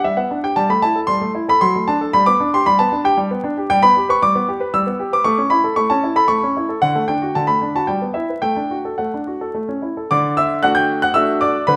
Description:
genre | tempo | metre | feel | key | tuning
classical-period piano sonatina | 114 BPM | 3/4 | rubato | G major, D major from 3.7 s | A4 = 440 Hz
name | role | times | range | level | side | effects
warm baby grand piano | solo | 0.0-11.8 s | D3 to G6 | -17 LUFS | equal | none
room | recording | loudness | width
moderate recital hall reverb, RT60 1.6 s | vinyl crackle | -17 LUFS | mono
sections
0.0-10.1 A section; 10.1-11.8 B section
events
none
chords
0.0 G; 0.6 A5/G; 1.6 D7/F#; 2.1 G; 5.3 A; 6.8 D; 7.9 Em/G; 8.4 D/A; 9.6 A; 10.1 D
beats
0.04 | 0.56 1.09 1.61 | 2.14 2.66 3.17 | 3.69 4.21 4.73 | 5.25 5.78 6.29 | 6.81 7.34 7.88 | 8.43 9.00 9.56 | 10.11 10.64 11.16 | 11.69

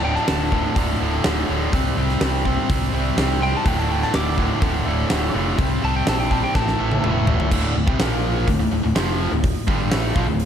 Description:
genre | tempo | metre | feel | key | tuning
hard rock | 125 BPM | 4/4 | straight | D minor | A4 = 441 Hz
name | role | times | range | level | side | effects
lightly driven lead guitar | melody | 0.0-7.0 s | G5 to D6 | -27 LUFS | equal | slapback echo, tape echo
distorted electric guitar | riff | 0.0-10.5 s | D2 to C4 | -25 LUFS | right 9 dB | overdrive, slapback echo
tight distorted guitar | riff | 0.0-10.5 s | D2 to C4 | -26 LUFS | left 9 dB | distortion, slapback echo
hollow-body short-scale fingered electric bass | bass | 0.0-10.5 s | D1 to C2 | -24 LUFS | equal | none
huge arena drum kit | drums | 0.2-10.5 s | crash cymbal, hi-hat, kick drum, snare drum, toms | -22 LUFS | equal | none
room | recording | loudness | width
moderate lush hall reverb, RT60 1.9 s, studio ambience | big arena sound | -18 LUFS | side -8 dB against mid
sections
0.0-7.5 A section; 7.5-10.5 B section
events
lead electric guitar solo 0.0-7.5; drum fill 6.5-7.5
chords
0.0 D5; 1.7 C5; 3.7 D5; 5.6 C5; 6.5 A5; 7.5 D5; 8.0 Bb5; 8.5 Dm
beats
0.28 0.76 1.25 | 1.73 2.21 2.69 3.18 | 3.66 4.14 4.62 5.11 | 5.59 6.07 6.55 7.03 | 7.51 7.99 8.47 8.95 | 9.43 9.91 10.39

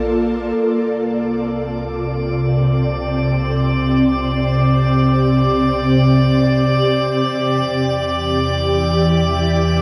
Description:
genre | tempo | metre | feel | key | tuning
ambient | free time | none | none | C major | A4 = 442 Hz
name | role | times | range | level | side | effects
ethereal airy pad | sustained chords | 0.0-9.8 s | C3 to D5 | -18 LUFS | equal | ensemble chorus, built-in reverb, phaser
warm sub bass | bass | 0.0-9.8 s | Bb1 to E2 | -29 LUFS | equal | none
drifting glass-harmonics texture | texture | 0.0-9.8 s | C5 to D6 | -25 LUFS | equal | chorus, built-in reverb
room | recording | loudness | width
wet huge ambient reverb, RT60 8.0 s | dreamy mix soaked in reverb | -17 LUFS | mono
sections
0.6-9.8 A section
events
fade-in on sub bass 0.6-9.8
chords
0.0 Bbmaj7; 0.6 Csus2; 7.1 Em7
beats
free time

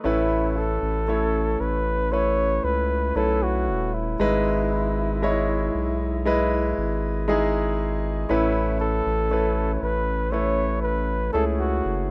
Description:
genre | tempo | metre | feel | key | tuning
pop ballad | 58 BPM | 4/4 | straight | unclear | A4 = 440 Hz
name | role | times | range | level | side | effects
mellow flugelhorn | melody | 0.0-12.1 s | E4 to C#5 | -28 LUFS | equal | none
clear concert grand piano | accompaniment | 0.0-12.1 s | G#2 to D#5 | -27 LUFS | equal | none
saturated sub bass | bass | 0.0-12.1 s | D#1 to C#2 | -29 LUFS | equal | none
room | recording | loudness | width
light reverb | rough home demo mix | -24 LUFS | mono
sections
0.0-12.1 A section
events
none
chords
0.0 Aadd9; 4.2 Emaj7/G#; 8.3 Aadd9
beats
| 0.05 1.09 2.12 3.16 | 4.20 5.23 6.26 7.29 | 8.30 9.31 10.32 11.34

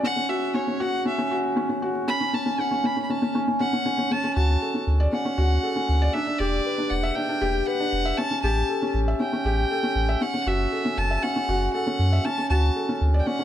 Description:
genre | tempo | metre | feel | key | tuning
piano and strings electronica | 118 BPM | 4/4 | straight | unclear | A4 = 441 Hz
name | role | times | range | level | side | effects
rich violin | melody | 0.0-13.4 s | C#5 to B5 | -28 LUFS | equal | none
felt-muted upright piano | riff | 0.0-13.4 s | C#4 to E5 | -24 LUFS | equal | ping-pong delay
warm sub bass | bass | 4.4-13.2 s | E1 to F#2 | -22 LUFS | equal | none
room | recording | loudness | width
moderate echo chamber reverb, RT60 1.6 s, small room ambience | none | -22 LUFS | side -11 dB against mid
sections
0.0-4.1 A section; 4.1-13.4 B section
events
build-up 0.0-4.1; drop 4.1-13.4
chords
0.0 C#madd11; 2.1 N.C.; 4.1 Dmaj7; 6.1 Em7; 8.2 A7; 10.2 F#m7; 12.2 Dmaj7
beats
| 0.05 0.56 1.06 1.57 | 2.08 2.59 3.10 3.61 | 4.11 4.62 5.13 5.64 | 6.15 6.66 7.17 7.67 | 8.18 8.69 9.20 9.71 | 10.22 10.72 11.23 11.74 | 12.25 12.76 13.27

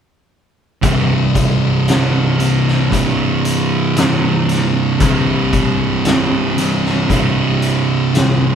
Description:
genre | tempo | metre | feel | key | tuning
stoner and doom metal | 57 BPM | 4/4 | straight | unclear | A4 = 440 Hz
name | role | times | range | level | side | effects
thick fuzz guitar | riff | 0.8-8.6 s | C2 to C3 | -19 LUFS | left 9 dB | distortion
thick fuzz guitar | riff | 0.8-8.6 s | C2 to C3 | -15 LUFS | right 4 dB | distortion
oversized low-tuned drum kit | drums | 0.8-8.4 s | hi-hat, kick drum, snare drum | -18 LUFS | left 1 dB | none
room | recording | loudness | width
light reverb | band playing live in one room | -13 LUFS | side -8 dB against mid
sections
0.8-8.6 A section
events
none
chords
0.8 C5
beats
| 0.83 1.87 2.92 3.96 | 5.01 6.05 7.10 8.15

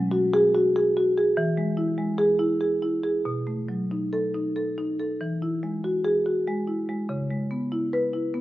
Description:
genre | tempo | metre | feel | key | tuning
classical, contemporary piece for solo marimba | 95 BPM | 3/4 | rubato | E major | A4 = 440 Hz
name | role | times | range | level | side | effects
marimba with soft mallets | solo | 0.0-8.4 s | B2 to B4 | -22 LUFS | equal | none
room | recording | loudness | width
light reverb | close, detailed microphones | -22 LUFS | side -15 dB against mid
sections
0.0-5.2 A section; 5.2-8.4 B section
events
none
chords
0.0 G#m7/B; 1.4 E; 3.3 B7; 5.2 Eadd9; 7.1 C#m7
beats
0.12 0.75 | 1.37 1.98 2.61 | 3.26 3.91 4.55 | 5.20 5.83 6.47 | 7.09 7.72 8.34

